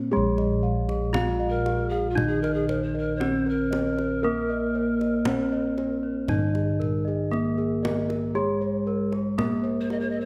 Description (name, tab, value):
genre	Javanese gamelan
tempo	58 BPM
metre	4/4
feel	straight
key	Bb slendro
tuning	A4 = 441 Hz
part	gamelan-type bronze metallophone	melody	0.0-10.3 s	Ab3-45c to F4+25c	-29 LUFS	equal	none
part	gamelan-type bronze metallophone	accompaniment	0.0-10.3 s	Eb3-35c to Bb3	-35 LUFS	equal	none
part	gamelan-type bossed gongs	bass	0.0-10.3 s	Bb1 to Bb4	-32 LUFS	equal	none
part	gamelan-type bronze metallophone	arpeggios	0.1-10.3 s	Ab4-45c to F5+25c	-38 LUFS	equal	none
part	gamelan-type bossed gongs	arpeggios	0.4-10.2 s	Ab4-45c to F5+25c	-37 LUFS	equal	none
part	kendang	percussion	0.4-10.0 s	none	-35 LUFS	equal	none
part	reedy pan flute	second line	1.5-10.3 s	F4+36c to Eb5-26c	-34 LUFS	equal	none
room	moderate scoring stage reverb, RT60 1.7 s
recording	none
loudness	-25 LUFS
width	mono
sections	0.1-10.3 A section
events	none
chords	none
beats	| 0.12 1.15 2.18 3.21 | 4.24 5.27 6.30 7.33 | 8.36 9.39